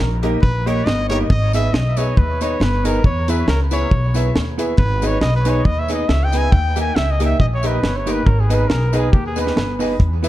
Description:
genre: ska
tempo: 138 BPM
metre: 4/4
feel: swing 55% on 8ths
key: G# harmonic minor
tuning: A4 = 440 Hz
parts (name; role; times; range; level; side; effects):
- clear trumpet; melody; 0.0-9.8 s; G4 to G#5; -23 LUFS; equal; dub echo
- hollow-body jazz guitar; accompaniment; 0.0-10.3 s; A#3 to B4; -25 LUFS; right 5 dB; dub echo
- upright bass; bass; 0.0-10.3 s; G1 to E2; -19 LUFS; equal; none
- warm upright piano; stabs; 0.2-10.3 s; D#4 to E5; -26 LUFS; left 5 dB; none
- deep reggae drum kit; drums; 0.2-10.3 s; hi-hat, kick drum, snare drum; -17 LUFS; equal; none
- tambourine; percussion; 1.5-10.3 s; none; -37 LUFS; left 7 dB; none
room: light reverb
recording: dark, warm production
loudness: -15 LUFS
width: side -14 dB against mid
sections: 0.0-10.3 A section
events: trumpet solo 0.0-10.3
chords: 0.0 D#; 1.3 G#m; 3.0 E; 4.8 G#m; 6.5 D#; 8.3 G#m

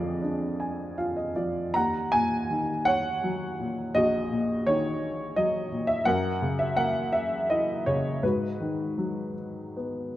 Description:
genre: classical, lyrical solo piano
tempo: 83 BPM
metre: 3/4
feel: uneven beats, rubato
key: unclear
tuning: A4 = 440 Hz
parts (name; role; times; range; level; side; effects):
- warm upright piano; solo; 0.0-10.2 s; A#1 to A#5; -25 LUFS; equal; none
room: moderate scoring stage reverb, RT60 2.0 s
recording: none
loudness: -25 LUFS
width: side -14 dB against mid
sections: 0.0-10.2 A section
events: upright piano fill 0.2-1.7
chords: 0.0 A#7; 1.7 D#m7; 6.1 F#7; 8.2 G#m7

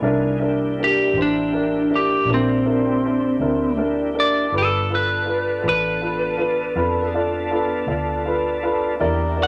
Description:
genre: slow blues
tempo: 54 BPM (dotted quarters)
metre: 12/8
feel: straight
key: G mixolydian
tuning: A4 = 439 Hz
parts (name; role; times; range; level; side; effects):
- warm upright piano; accompaniment; 0.0-9.5 s; D4 to D5; -25 LUFS; equal; none
- tonewheel organ; sustained chords; 0.0-9.5 s; Bb3 to A4; -30 LUFS; equal; slow rotary speaker, chorus vibrato
- vintage muted fingered electric bass; bass; 0.0-9.5 s; G1 to F2; -30 LUFS; equal; none
- lightly driven lead guitar; melody; 0.8-9.5 s; C4 to G5; -22 LUFS; equal; none
- warm horn section; sustained chords; 9.0-9.5 s; D4 to Bb4; -29 LUFS; equal; none
room: moderate large studio reverb, RT60 1.2 s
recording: none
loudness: -20 LUFS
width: mono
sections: 0.0-9.5 A section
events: lead electric guitar solo 0.0-9.5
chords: 0.0 C9; 4.5 G9

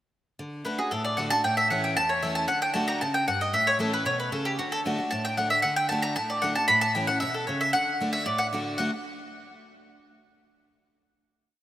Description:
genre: bluegrass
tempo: 229 BPM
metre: 4/4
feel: straight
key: D major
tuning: A4 = 440 Hz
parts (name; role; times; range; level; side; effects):
- picked steel-string acoustic guitar; accompaniment; 0.4-8.9 s; E2 to F#4; -30 LUFS; equal; none
- mandolin; melody; 0.7-8.9 s; F#4 to B5; -25 LUFS; equal; none
room: wet lush hall reverb, RT60 2.8 s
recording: rough home demo mix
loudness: -23 LUFS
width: side -13 dB against mid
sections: 0.4-8.8 A section; 8.8-9.8 final chord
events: none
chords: 0.4 D; 1.4 A; 2.5 D; 3.5 A; 4.6 D; 6.7 A; 7.7 D

